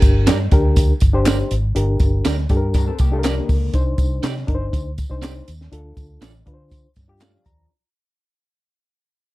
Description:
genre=uptempo 1960s-style soul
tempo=121 BPM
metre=4/4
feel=straight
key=G minor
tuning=A4 = 440 Hz
part: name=mellow reed electric piano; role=accompaniment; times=0.0-7.7 s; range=D4 to Bb5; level=-25 LUFS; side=left 2 dB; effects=overdrive, harmonic tremolo
part: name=vintage muted fingered electric bass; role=bass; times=0.0-7.7 s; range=G1 to D3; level=-20 LUFS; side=equal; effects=none
part: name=compact cocktail drum kit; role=drums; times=0.0-7.6 s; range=hi-hat, kick drum, snare drum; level=-18 LUFS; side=equal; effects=none
part: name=tambourine and handclaps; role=percussion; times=0.0-7.6 s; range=none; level=-33 LUFS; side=left 1 dB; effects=none
part: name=electric guitar at the edge of break-up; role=stabs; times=0.3-7.3 s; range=C4 to D5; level=-26 LUFS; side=right 8 dB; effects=none
part: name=electric guitar through a small old amp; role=riff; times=2.8-3.7, 7.1-7.7 s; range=D3 to Bb4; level=-31 LUFS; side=left 7 dB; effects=lush chorus
room=little or no reverb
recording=dark, warm production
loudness=-16 LUFS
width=side -18 dB against mid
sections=0.0-7.7 A section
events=fade-out 0.0-7.7; reed electric piano fill 7.0-7.7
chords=0.0 Gm; 3.7 Cmadd9; 5.7 Dm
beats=0.28 0.77 1.27 | 1.76 2.26 2.75 3.25 | 3.74 4.24 4.73 5.23 | 5.72 6.22 6.71 7.21

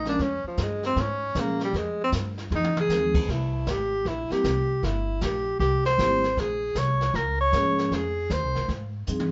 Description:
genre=jazz, small-group swing and bop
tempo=155 BPM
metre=4/4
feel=swing 64% on 8ths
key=F minor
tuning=A4 = 439 Hz
part: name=clear tenor saxophone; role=melody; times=0.0-8.7 s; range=F3 to Db5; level=-28 LUFS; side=equal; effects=none
part: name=vibraphone with medium mallets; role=accompaniment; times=0.0-9.3 s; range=F3 to Bb4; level=-31 LUFS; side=equal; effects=none
part: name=upright bass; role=bass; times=0.0-9.3 s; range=G1 to Bb2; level=-32 LUFS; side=equal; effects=none
part: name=jazz brush drum kit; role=drums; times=0.1-9.3 s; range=brushed snare drum, crash cymbal, hi-hat, kick drum, snare drum, toms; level=-34 LUFS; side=equal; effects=none
room=light reverb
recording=band playing live in one room, nothing above 7.5 kHz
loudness=-26 LUFS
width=mono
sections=0.0-9.3 A section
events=tenor saxophone solo 0.0-9.3; drum fill 2.5-2.9, 9.1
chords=0.0 Bbm7; 1.7 Fm7; 3.3 C7; 6.4 Bbm7; 7.9 Fm7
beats=| 0.19 0.58 0.97 1.35 | 1.74 2.13 2.51 2.90 | 3.29 3.67 4.06 4.44 | 4.83 5.21 5.60 5.99 | 6.37 6.76 7.14 7.53 | 7.92 8.30 8.69 9.07

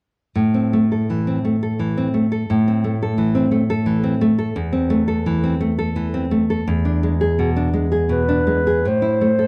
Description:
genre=romantic duo for clarinet and classical guitar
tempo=85 BPM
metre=3/4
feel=rubato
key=A minor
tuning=A4 = 440 Hz
part: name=nylon-string guitar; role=accompaniment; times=0.4-9.5 s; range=E2 to A4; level=-19 LUFS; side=equal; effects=none
part: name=warm clarinet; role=melody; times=8.1-9.5 s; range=B4 to C5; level=-21 LUFS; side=equal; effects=none
room=small room ambience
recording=dry, close 1970s-style studio recording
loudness=-19 LUFS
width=mono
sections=0.4-8.9 A section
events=none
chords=0.4 Am; 4.6 Am/E; 6.7 E7; 8.9 Am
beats=| 0.36 1.09 1.79 | 2.49 3.18 3.86 | 4.55 5.26 5.96 | 6.67 7.38 8.11 | 8.86

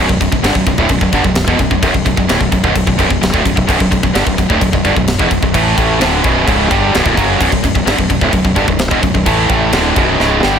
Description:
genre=heavy metal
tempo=129 BPM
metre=4/4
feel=straight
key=B minor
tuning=A4 = 440 Hz
part: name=high-gain distorted guitar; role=riff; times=0.0-10.6 s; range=B1 to A3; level=-15 LUFS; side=right 11 dB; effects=distortion
part: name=tight distorted guitar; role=riff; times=0.0-10.6 s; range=B1 to A3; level=-16 LUFS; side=left 11 dB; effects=distortion
part: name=growling fingered electric bass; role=bass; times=0.0-10.6 s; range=B0 to A1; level=-19 LUFS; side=equal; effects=overdrive
part: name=tight metal drum kit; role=drums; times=0.1-10.5 s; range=crash cymbal, kick drum, snare drum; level=-16 LUFS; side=equal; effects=none
room=light reverb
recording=none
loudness=-10 LUFS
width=side -8 dB against mid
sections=0.0-10.6 A section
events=drum fill 10.2-10.6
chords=0.0 Bm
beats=0.43 0.90 1.36 | 1.83 2.29 2.75 3.22 | 3.68 4.15 4.61 5.08 | 5.54 6.01 6.47 6.94 | 7.40 7.87 8.33 8.80 | 9.27 9.73 10.20

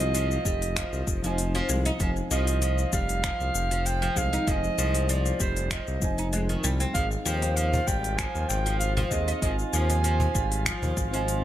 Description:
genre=organic downtempo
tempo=97 BPM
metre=4/4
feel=swing 53% on 16ths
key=F minor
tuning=A4 = 444 Hz
part: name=mellow clarinet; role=melody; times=0.0-10.9 s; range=C5 to Ab5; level=-31 LUFS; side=right 2 dB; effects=vintage 12-bit sampler grit, digital delay
part: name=felt-muted upright piano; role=accompaniment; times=0.0-11.4 s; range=F3 to Ab5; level=-35 LUFS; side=equal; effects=vintage 12-bit sampler grit, sidechain pumping, digital delay
part: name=oud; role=arpeggios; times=0.0-11.4 s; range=Eb3 to Eb4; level=-32 LUFS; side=left 1 dB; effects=digital delay
part: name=smooth synth bass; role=bass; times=0.0-11.4 s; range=F1 to Eb2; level=-27 LUFS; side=equal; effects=sidechain pumping
part: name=organic electronic drum kit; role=drums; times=0.0-11.4 s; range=cabasa, finger snaps, hi-hat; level=-32 LUFS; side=left 3 dB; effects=none
part: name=electronic kick drum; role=drums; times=0.5-11.1 s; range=none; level=-30 LUFS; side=equal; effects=none
part: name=drifting glass-harmonics texture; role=texture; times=7.8-11.4 s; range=F4 to F5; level=-40 LUFS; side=equal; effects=chorus, built-in reverb
part: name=cajon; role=percussion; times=7.4-11.1 s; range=none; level=-33 LUFS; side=right 1 dB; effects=none
room=small room ambience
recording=none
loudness=-24 LUFS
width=side -12 dB against mid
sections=0.0-11.4 A section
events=none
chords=0.0 Fm7; 6.9 Ab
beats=0.14 0.76 1.38 | 2.00 2.62 3.24 3.85 | 4.47 5.09 5.71 6.33 | 6.95 7.57 8.19 8.80 | 9.42 10.04 10.66 11.28

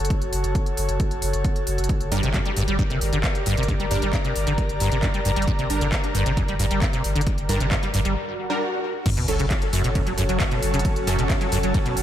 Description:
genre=driving peak-time techno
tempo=134 BPM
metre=4/4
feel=straight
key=unclear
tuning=A4 = 440 Hz
part: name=warm sub bass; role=bass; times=0.0-12.0 s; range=F#1 to G1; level=-27 LUFS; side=equal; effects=overdrive, sidechain pumping, low-pass filter
part: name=techno drum kit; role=drums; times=0.0-12.0 s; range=crash cymbal, handclaps, hi-hat, ride cymbal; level=-31 LUFS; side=equal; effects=overdrive, small room ambience
part: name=airy breathy pad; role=texture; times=0.0-12.0 s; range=F#4 to Bb5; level=-29 LUFS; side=left 1 dB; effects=chorus, sidechain pumping
part: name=electronic kick drum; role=drums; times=0.1-11.8 s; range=none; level=-24 LUFS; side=equal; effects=overdrive, small room ambience
part: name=acid bass, saw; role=riff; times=2.1-11.9 s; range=F#2 to G3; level=-25 LUFS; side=equal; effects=ensemble chorus, sidechain pumping, ping-pong delay
part: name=supersaw stab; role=stabs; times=2.1-11.2 s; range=F#3 to Bb4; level=-31 LUFS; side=right 1 dB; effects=ensemble chorus, sidechain pumping, ping-pong delay
part: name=swell and sub drop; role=sound effects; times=8.3-10.8 s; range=none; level=-30 LUFS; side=equal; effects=none
part: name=swarming drone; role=drone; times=9.7-12.0 s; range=F#3 to C#4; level=-32 LUFS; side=right 1 dB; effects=built-in reverb, analog chorus, sidechain pumping
room=moderate lush hall reverb, RT60 1.8 s, digital ambience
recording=dreamy mix soaked in reverb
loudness=-20 LUFS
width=side -11 dB against mid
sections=0.0-9.1 A section; 9.1-12.0 B section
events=break 8.2-9.1; swell 8.3-9.1; drop 9.1-12.0; impact 9.1-10.8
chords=0.0 F#m; 1.9 Gm; 9.1 F#m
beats=| 0.10 0.55 1.00 1.45 | 1.89 2.34 2.79 3.24 | 3.69 4.13 4.58 5.03 | 5.48 5.92 6.37 6.82 | 7.27 7.71 8.16 8.61 | 9.06 9.51 9.95 10.40 | 10.85 11.30 11.74

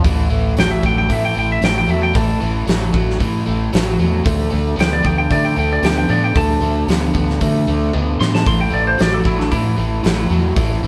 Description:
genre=blues rock power trio and southern rock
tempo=114 BPM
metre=4/4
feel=straight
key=unclear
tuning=A4 = 442 Hz
part: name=crunchy overdriven guitar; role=riff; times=0.0-10.9 s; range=A2 to B3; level=-22 LUFS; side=equal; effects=none
part: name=vintage muted fingered electric bass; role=bass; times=0.0-10.9 s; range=A1 to D3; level=-22 LUFS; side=equal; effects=none
part: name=big rock drum kit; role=drums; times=0.0-10.7 s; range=hi-hat, kick drum, snare drum, toms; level=-21 LUFS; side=equal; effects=none
part: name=lightly driven lead guitar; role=melody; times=0.6-10.9 s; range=D4 to C6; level=-23 LUFS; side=equal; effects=none
room=moderate stone room reverb, RT60 1.4 s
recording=band playing live in one room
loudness=-17 LUFS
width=mono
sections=0.0-10.9 A section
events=lead electric guitar solo 0.0-10.9; drum fill 7.9-8.5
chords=0.0 A5; 4.3 D5; 8.5 A5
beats=| 0.05 0.57 1.10 1.62 | 2.15 2.68 3.20 3.73 | 4.25 4.78 5.31 5.83 | 6.36 6.89 7.41 7.94 | 8.47 8.99 9.52 10.04 | 10.57

